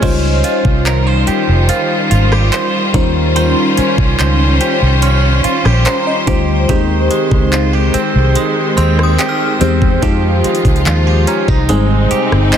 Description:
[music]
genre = contemporary R&B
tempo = 72 BPM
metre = 4/4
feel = straight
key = Ab major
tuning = A4 = 440 Hz
[part]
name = FM electric piano with soft pad layer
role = accompaniment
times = 0.0-12.6 s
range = G3 to Bb5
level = -16 LUFS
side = left 2 dB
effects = chorus
[part]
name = clear studio string section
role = sustained chords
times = 0.0-12.6 s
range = C3 to C5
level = -19 LUFS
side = left 1 dB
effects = none
[part]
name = direct-recorded clean electric guitar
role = arpeggios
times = 0.0-12.6 s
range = Eb3 to C5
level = -19 LUFS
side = right 7 dB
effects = vibrato effect, ping-pong delay
[part]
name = vintage muted fingered electric bass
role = bass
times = 0.0-12.5 s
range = F1 to F2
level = -13 LUFS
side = equal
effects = none
[part]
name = smooth R&B drum kit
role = drums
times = 0.0-12.6 s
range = crash cymbal, handclaps, hi-hat, kick drum, rim click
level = -18 LUFS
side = equal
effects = none
[part]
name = synth chime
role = texture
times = 0.0-10.9 s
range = Eb5 to F6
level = -26 LUFS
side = left 2 dB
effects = ensemble chorus, phaser, ping-pong delay
[sound]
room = light reverb, digital ambience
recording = dense, heavily limited modern master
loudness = -10 LUFS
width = side -9 dB against mid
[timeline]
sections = 0.0-12.6 A section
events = FM electric piano fill 5.4-6.7, 10.9-12.6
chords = 0.0 Dbmaj9#11; 2.9 Eb13; 6.7 Abmaj7; 10.0 Fm9; 11.7 Abmaj7

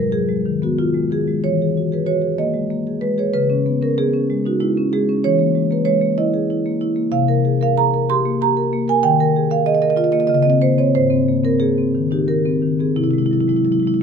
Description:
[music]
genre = classical, contemporary piece for solo marimba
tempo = 94 BPM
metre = 3/4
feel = rubato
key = unclear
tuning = A4 = 437 Hz
[part]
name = marimba with soft mallets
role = solo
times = 0.0-14.0 s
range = G#2 to C6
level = -16 LUFS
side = equal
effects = none
[sound]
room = light reverb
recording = close, detailed microphones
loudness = -16 LUFS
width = side -6 dB against mid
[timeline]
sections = 0.0-14.0 A section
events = none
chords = 0.0 G#m; 1.4 Emaj7#11; 3.3 C#sus2; 5.2 Emaj7#11; 7.1 C5; 9.0 Ebsus2; 10.3 Bbmadd9/Db; 10.9 Ab; 12.9 Caug

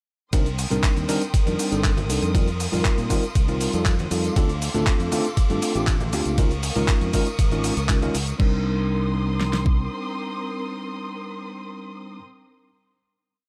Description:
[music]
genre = nu-disco, nu disco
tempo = 119 BPM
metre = 4/4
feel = straight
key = C dorian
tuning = A4 = 440 Hz
[part]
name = mellow tine electric piano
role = accompaniment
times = 0.3-12.2 s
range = G3 to Bb4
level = -29 LUFS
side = equal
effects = sidechain pumping, analog delay
[part]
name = warm studio string section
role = sustained chords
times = 0.3-12.2 s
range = C4 to Eb6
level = -35 LUFS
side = equal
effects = sidechain pumping
[part]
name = overdriven fingered electric bass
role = bass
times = 0.3-9.9 s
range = G1 to Bb2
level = -29 LUFS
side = equal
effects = none
[part]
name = dusty soul sampler-style drum kit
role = drums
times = 0.3-8.5 s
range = crash cymbal, handclaps, hi-hat, ride cymbal, shaker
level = -32 LUFS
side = equal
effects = none
[part]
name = pop drum kit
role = drums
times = 0.3-9.8 s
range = kick drum, snare drum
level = -23 LUFS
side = equal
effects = none
[part]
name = tambourine and congas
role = percussion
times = 0.3-8.4 s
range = none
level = -37 LUFS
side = equal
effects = none
[sound]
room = little or no reverb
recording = none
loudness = -23 LUFS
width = mono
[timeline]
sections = 0.3-8.4 drop; 8.4-12.4 final chord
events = drop 0.3-8.4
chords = 0.3 Cm7; 2.3 F7sus4; 4.4 Dm7; 6.4 Db69; 8.4 Cm7

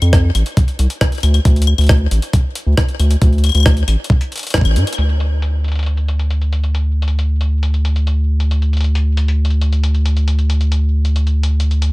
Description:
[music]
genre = IDM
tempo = 136 BPM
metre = 4/4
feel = straight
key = D minor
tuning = A4 = 440 Hz
[part]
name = round analog bass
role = bass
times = 0.0-11.9 s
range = A1 to G2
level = -13 LUFS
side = equal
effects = none
[part]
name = jungle sampler-style drum kit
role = drums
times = 0.0-11.9 s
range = claves, hi-hat, rim click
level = -22 LUFS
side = left 2 dB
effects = low-pass filter on hats, low-pass filter on perc, low-pass filter on snare, ping-pong delay
[part]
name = electronic kick drum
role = drums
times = 0.1-4.6 s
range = none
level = -13 LUFS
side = equal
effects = none
[sound]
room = little or no reverb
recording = none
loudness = -13 LUFS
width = side -21 dB against mid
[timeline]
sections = 0.0-5.0 A section; 5.0-11.9 B section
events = band accent 4.5; drum fill 4.8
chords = none

